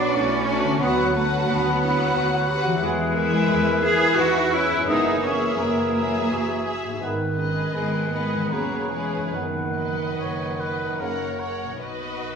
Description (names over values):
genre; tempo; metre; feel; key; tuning
classical, slow romantic movement for symphony orchestra; 70-91 BPM; 3/4; rubato; B major; A4 = 442 Hz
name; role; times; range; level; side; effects
warm symphonic violin section; melody; 0.0-12.4 s; C#5 to F#5; -32 LUFS; left 4 dB; none
dark clarinet; second line; 0.0-11.4 s; B3 to B4; -31 LUFS; left 1 dB; none
mellow hollow flute section; second line; 0.0-11.4 s; F#5 to G#6; -31 LUFS; equal; none
warm oboe; second line; 0.0-11.8 s; G#4 to D5; -30 LUFS; left 1 dB; none
warm symphonic violin section; second line; 0.0-12.4 s; F#4 to C#5; -34 LUFS; left 1 dB; none
mellow bassoon; accompaniment; 0.0-11.5 s; C#3 to F#3; -30 LUFS; right 4 dB; none
rich symphonic viola section; accompaniment; 0.0-12.4 s; F#4 to B4; -33 LUFS; equal; none
dark French horn section; sustained chords; 0.0-11.4 s; D#3 to E4; -30 LUFS; left 2 dB; none
concert harp; arpeggios; 0.0-12.4 s; E2 to C#5; -33 LUFS; left 7 dB; none
rich studio cello section; bass; 0.0-12.4 s; B2 to G#4; -26 LUFS; right 1 dB; none
warm symphonic double bass section; bass; 0.0-12.4 s; E1 to E2; -32 LUFS; right 3 dB; none
clear trombone section; sustained chords; 0.8-11.3 s; C#3 to B3; -33 LUFS; right 4 dB; none
room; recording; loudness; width
wet scoring stage reverb, RT60 1.4 s; studio reverb; -20 LUFS; side -6 dB against mid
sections
0.0-11.8 A section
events
none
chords
0.0 Bm; 0.8 Bm/D; 2.8 E; 4.9 F#9; 7.0 G#m; 8.5 C#m7/E; 9.3 B/F#; 11.8 B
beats
0.15 | 0.82 1.50 2.18 | 2.84 3.51 4.18 | 4.89 5.59 6.30 | 7.01 7.74 8.52 | 9.34 10.19 11.00 | 11.82